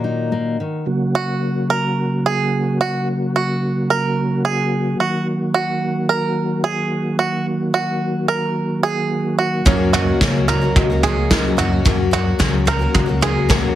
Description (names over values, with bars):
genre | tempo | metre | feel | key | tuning
indie folk with a building arrangement | 109 BPM | 4/4 | straight | F# major | A4 = 440 Hz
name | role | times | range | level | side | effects
fingerpicked steel-string acoustic guitar | accompaniment | 0.0-2.8 s | A#2 to F#4 | -21 LUFS | left 3 dB | plate reverb
mellow tonewheel organ | sustained chords | 0.9-11.8 s | C#3 to F#4 | -21 LUFS | equal | chorus vibrato, slow rotary speaker
bluegrass banjo | arpeggios | 1.2-13.8 s | F#4 to A#4 | -21 LUFS | right 5 dB | plate reverb
felt-muted upright piano | accompaniment | 9.7-11.9 s | F#1 to D#5 | -25 LUFS | right 4 dB | plate reverb
picked twelve-string acoustic guitar | accompaniment | 9.7-13.8 s | F#2 to F#4 | -21 LUFS | left 6 dB | plate reverb
fingered electric bass | bass | 9.7-13.6 s | C#2 to F#2 | -21 LUFS | equal | none
soft brush drum kit | drums | 9.7-13.6 s | kick drum, snare drum, toms | -18 LUFS | right 1 dB | none
room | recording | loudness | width
moderate studio ambience, RT60 0.5 s | heavily compressed radio sound | -16 LUFS | side -12 dB against mid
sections
0.9-13.8 A section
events
none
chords
0.0 D#m; 0.9 F#; 5.0 D#m; 9.7 F#